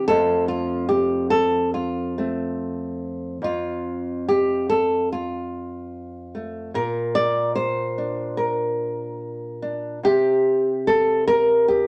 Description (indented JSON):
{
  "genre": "folk, solo fingerstyle acoustic guitar",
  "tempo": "73 BPM",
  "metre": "4/4",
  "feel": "straight",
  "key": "F major",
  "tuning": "A4 = 443 Hz",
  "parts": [
    { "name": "nylon-string guitar", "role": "solo", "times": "0.0-11.9 s", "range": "F2 to D5", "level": "-23 LUFS", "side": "equal", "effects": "none" }
  ],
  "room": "moderate studio reverb, RT60 0.8 s",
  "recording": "none",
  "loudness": "-22 LUFS",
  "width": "mono",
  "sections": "0.0-3.4 A section; 3.4-11.9 B section",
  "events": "none",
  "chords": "0.1 F; 6.7 Bb; 10.0 C5"
}